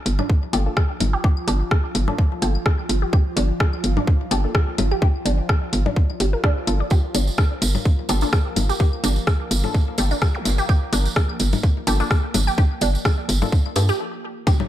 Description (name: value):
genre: minimal techno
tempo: 127 BPM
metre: 4/4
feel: swing 55% on 16ths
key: G minor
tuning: A4 = 440 Hz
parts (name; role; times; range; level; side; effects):
- bubbling stepped-filter texture; texture; 0.3-14.7 s; F3 to F4; -33 LUFS; equal; chorus, built-in reverb, sidechain pumping
- hollow knocking FM bass; bass; 0.1-13.9 s; G1 to G2; -20 LUFS; equal; sidechain pumping
- garage drum kit; drums; 0.1-14.6 s; hi-hat, rim click; -26 LUFS; left 1 dB; studio ambience
- bongos, congas and claves; percussion; 0.1-14.7 s; none; -30 LUFS; left 4 dB; studio ambience, ping-pong delay
- resonant blip pluck; riff; 0.2-14.5 s; D4 to D5; -28 LUFS; right 1 dB; phaser, cassette tape, sidechain pumping, tape echo
- electronic kick drum; drums; 0.3-14.6 s; none; -18 LUFS; equal; studio ambience
- filtered dub chord stab; stabs; 0.5-13.8 s; Bb3 to A4; -30 LUFS; left 3 dB; chorus, ping-pong delay
- tambourine; percussion; 6.9-14.6 s; none; -31 LUFS; right 5 dB; none
- zap and impact; sound effects; 10.3-10.5, 14.5-14.7 s; none; -34 LUFS; equal; none
room: little or no reverb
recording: dark, warm production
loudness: -18 LUFS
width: side -12 dB against mid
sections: 0.0-14.5 A section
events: stop 14.0-14.5; impact 14.5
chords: 0.0 Gm7